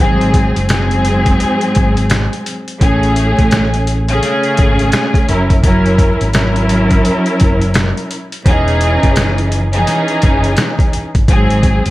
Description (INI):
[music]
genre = hip hop, boom-bap hip-hop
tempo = 85 BPM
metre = 4/4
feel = swing 61% on 16ths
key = unclear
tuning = A4 = 440 Hz
[part]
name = rich studio string section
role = accompaniment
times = 0.0-11.9 s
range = G#2 to A#4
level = -14 LUFS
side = equal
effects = cassette tape, high-pass filter, low-pass filter
[part]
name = fingered electric bass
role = bass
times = 0.0-11.9 s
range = E1 to A1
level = -16 LUFS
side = equal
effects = none
[part]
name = trip hop sampler-style drum kit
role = drums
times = 0.2-11.9 s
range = hi-hat, kick drum, snare drum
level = -14 LUFS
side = equal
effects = none
[sound]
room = little or no reverb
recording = vinyl crackle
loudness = -10 LUFS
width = side -17 dB against mid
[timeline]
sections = 0.0-11.9 A section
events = none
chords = 0.0 G#7; 2.8 Amaj7; 5.3 F#7; 8.5 C#madd9/E; 11.3 G#7